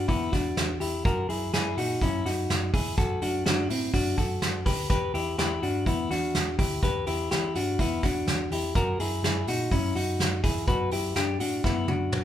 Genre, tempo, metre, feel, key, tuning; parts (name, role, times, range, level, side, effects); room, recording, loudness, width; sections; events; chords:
jangly indie pop; 125 BPM; 4/4; straight; E minor; A4 = 440 Hz
semi-hollow electric guitar; arpeggios; 0.0-12.2 s; B3 to B4; -28 LUFS; left 2 dB
vintage muted picked electric bass; bass; 0.0-12.2 s; D2 to A#2; -32 LUFS; right 1 dB
soft brush drum kit; drums; 0.1-12.2 s; hi-hat, kick drum, snare drum, toms; -28 LUFS; right 1 dB
light reverb; band playing live in one room; -24 LUFS; side -11 dB against mid
0.0-12.2 A section
drum fill 11.6-12.2
0.0 Em7; 1.1 F#7; 3.0 Bm7/F# (rootless); 4.9 Em7; 8.8 F#7; 10.7 Bm7/F#